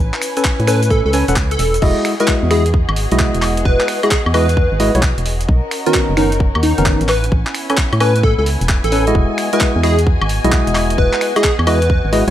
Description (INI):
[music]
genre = UK garage, two-step garage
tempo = 131 BPM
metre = 4/4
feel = swing 66% on 16ths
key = E major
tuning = A4 = 440 Hz
[part]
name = muted studio violin section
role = sustained chords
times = 0.0-12.3 s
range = B3 to G#5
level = -25 LUFS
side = left 1 dB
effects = vintage 12-bit sampler grit, sidechain pumping
[part]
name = organ-like FM bass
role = bass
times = 0.0-12.3 s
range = E1 to A2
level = -17 LUFS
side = equal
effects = sidechain pumping
[part]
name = breakbeat sampler-style drum kit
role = drums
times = 0.1-12.3 s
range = crash cymbal, finger snaps, handclaps, hi-hat, woodblock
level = -21 LUFS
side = equal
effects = none
[part]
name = cabasa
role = percussion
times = 0.2-1.8 s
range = none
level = -30 LUFS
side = left 4 dB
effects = none
[part]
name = percussive organ stab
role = stabs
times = 0.4-12.3 s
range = D#3 to G#5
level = -19 LUFS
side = equal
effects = chorus
[part]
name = electronic kick drum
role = drums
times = 0.4-12.0 s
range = none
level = -16 LUFS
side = equal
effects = none
[part]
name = plucky unison lead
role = melody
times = 0.7-12.3 s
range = D#4 to B4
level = -19 LUFS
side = equal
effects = tape echo
[sound]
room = digital ambience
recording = dry, gritty hardware recording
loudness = -12 LUFS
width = side -12 dB against mid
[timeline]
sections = 0.0-1.8 A section; 1.8-12.3 B section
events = drop 1.8-12.3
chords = 0.0 Amaj9; 1.8 Emaj9; 5.5 Bmaj9; 7.1 Amaj9; 9.2 Emaj9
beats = 0.45 0.91 1.36 | 1.82 2.28 2.74 3.20 | 3.65 4.11 4.57 5.03 | 5.49 5.94 6.40 6.86 | 7.32 7.78 8.23 8.69 | 9.15 9.61 10.07 10.52 | 10.98 11.44 11.90